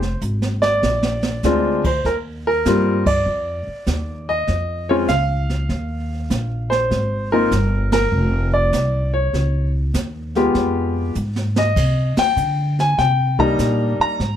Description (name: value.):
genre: jazz piano trio.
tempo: 99 BPM.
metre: 4/4.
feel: swing 67% on 8ths.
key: Eb major.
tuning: A4 = 438 Hz.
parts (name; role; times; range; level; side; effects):
warm baby grand piano; melody; 0.0-14.4 s; G3 to Bb5; -19 LUFS; left 1 dB; none.
upright bass; bass; 0.0-14.4 s; F1 to D3; -21 LUFS; equal; none.
jazz brush drum kit; drums; 0.0-14.4 s; brushed snare drum, crash cymbal, hi-hat, kick drum, ride cymbal, snare drum; -25 LUFS; right 2 dB; none.
room: moderate small room reverb, RT60 0.5 s.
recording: lossy compression artefacts.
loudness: -17 LUFS.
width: side -10 dB against mid.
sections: 0.0-2.0 A section; 2.0-14.4 B section.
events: drum fill 0.2-1.4, 11.2-11.8; band accent 3.0-3.3, 7.8-8.1, 12.1-12.4.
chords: 0.0 Fm; 0.8 Bb7; 2.0 Ebadd9; 4.5 Dbadd9; 5.7 Ebsus2; 6.9 Ab69; 9.3 Db7#11; 11.8 Cm9.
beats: 0.23 0.83 1.44 | 2.05 2.66 3.27 3.87 | 4.48 5.09 5.70 6.30 | 6.91 7.52 8.12 8.73 | 9.34 9.95 10.55 11.16 | 11.77 12.37 12.98 13.59 | 14.19.